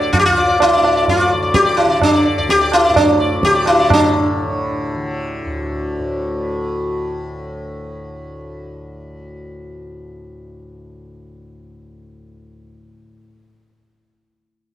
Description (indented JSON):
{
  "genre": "indian classical, Hindustani",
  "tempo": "128 BPM",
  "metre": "5/4",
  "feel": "straight",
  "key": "unclear",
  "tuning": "A4 = 440 Hz",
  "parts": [
    { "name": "sitar", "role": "melody", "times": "0.0-7.6 s", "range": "D4 to D5", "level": "-15 LUFS", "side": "left 1 dB", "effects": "none" },
    { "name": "tanpura", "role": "drone", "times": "0.0-13.1 s", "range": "D2 to D3", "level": "-24 LUFS", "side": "left 1 dB", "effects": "none" },
    { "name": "tabla", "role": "percussion", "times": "0.1-4.1 s", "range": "none", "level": "-19 LUFS", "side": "right 3 dB", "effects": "none" }
  ],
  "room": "wet recital hall reverb, RT60 1.7 s",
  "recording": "dark, warm production",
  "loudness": "-13 LUFS",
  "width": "side -12 dB against mid",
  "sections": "0.0-3.9 A section; 3.9-6.2 B section",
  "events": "none",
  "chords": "none"
}